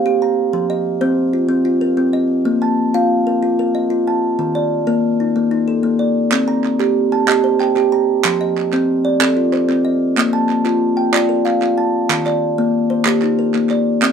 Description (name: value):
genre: southern african traditional, mbira-style interlocking cycle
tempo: 125 BPM (dotted quarters)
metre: 12/8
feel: straight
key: unclear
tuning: A4 = 440 Hz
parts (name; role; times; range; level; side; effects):
- kalimba; arpeggios; 0.0-14.1 s; Eb3 to Bb5; -14 LUFS; equal; none
- group handclap; percussion; 6.3-14.1 s; none; -20 LUFS; right 6 dB; none
room: moderate studio reverb, RT60 0.5 s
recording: none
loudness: -14 LUFS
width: side -7 dB against mid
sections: 0.0-6.3 A section; 6.3-14.1 B section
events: none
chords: 0.0 C5; 0.5 F5; 2.5 Bb5; 4.4 Eb5; 6.3 Cm; 8.2 F; 10.2 Bb; 12.1 Eb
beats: 0.06 | 0.54 1.02 1.50 1.99 | 2.47 2.95 3.43 3.91 | 4.39 4.88 5.36 5.84 | 6.32 6.80 7.29 7.77 | 8.25 8.73 9.21 9.69 | 10.17 10.65 11.13 11.62 | 12.10 12.58 13.06 13.54 | 14.02